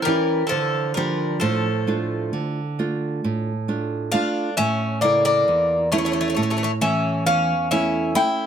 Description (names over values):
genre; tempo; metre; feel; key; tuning
greek folk, Greek bouzouki band; 133 BPM (eighths); 9/8; straight; A phrygian dominant; A4 = 441 Hz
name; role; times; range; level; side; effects
Greek bouzouki; melody; 0.0-8.5 s; A4 to G5; -22 LUFS; left 2 dB; none
nylon-string guitar; accompaniment; 0.0-8.5 s; E2 to A4; -23 LUFS; right 3 dB; none
Greek bouzouki; second line; 0.1-8.5 s; F3 to E4; -26 LUFS; left 1 dB; none
room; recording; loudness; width
light reverb; close, detailed microphones; -19 LUFS; side -8 dB against mid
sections
0.0-8.5 A section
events
none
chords
0.0 A (rootless); 0.5 Dm; 4.6 A